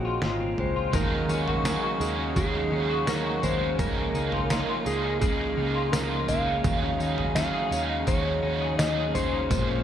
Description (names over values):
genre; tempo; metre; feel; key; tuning
dream pop; 84 BPM; 4/4; straight; unclear; A4 = 440 Hz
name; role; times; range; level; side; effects
clean lap steel guitar; melody; 0.0-9.8 s; F4 to F5; -30 LUFS; equal; digital delay
hand-pumped harmonium; sustained chords; 0.0-9.8 s; Db3 to F5; -34 LUFS; right 2 dB; none
electric guitar at the edge of break-up; arpeggios; 0.0-9.8 s; Bb2 to Ab4; -31 LUFS; left 4 dB; analog chorus, digital delay
vintage muted picked electric bass; bass; 0.0-9.8 s; Ab1 to Eb2; -31 LUFS; equal; none
detuned 8-bit digital drum machine; drums; 0.2-9.7 s; kick drum, snare drum, tambourine, toms; -30 LUFS; equal; gated reverb
crunchy overdriven guitar; accompaniment; 0.9-9.8 s; Bb2 to C5; -32 LUFS; right 5 dB; harmonic tremolo, analog chorus
room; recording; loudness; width
moderate plate reverb, RT60 2.3 s; bright 1980s-style digital production; -24 LUFS; side -10 dB against mid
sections
0.9-9.8 A section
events
none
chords
0.0 Dbmaj9; 0.9 Ebm11; 3.8 Db69; 6.7 Ebm11